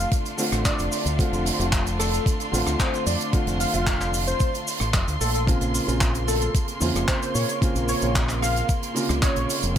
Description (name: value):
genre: nu-disco, nu disco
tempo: 112 BPM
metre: 4/4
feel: straight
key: F major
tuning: A4 = 440 Hz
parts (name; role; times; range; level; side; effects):
- wide unison lead; melody; 0.0-9.6 s; A4 to F5; -29 LUFS; left 1 dB; vintage 12-bit sampler grit, tape echo
- warm grand piano; accompaniment; 0.0-9.8 s; C3 to F4; -28 LUFS; right 1 dB; none
- rich studio violin section; sustained chords; 0.0-9.8 s; A3 to C6; -32 LUFS; equal; sidechain pumping
- fingered electric bass with an envelope filter; bass; 0.0-9.8 s; F1 to Bb2; -26 LUFS; equal; none
- tight funk drum kit; drums; 0.0-9.8 s; cabasa, handclaps, hi-hat, rim click; -28 LUFS; right 2 dB; none
- electronic kick drum; drums; 0.1-9.8 s; none; -23 LUFS; equal; none
room: light reverb, studio reverb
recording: none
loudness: -21 LUFS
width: side -10 dB against mid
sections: 0.0-9.8 A section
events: none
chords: 0.0 F6; 5.5 Bbmadd9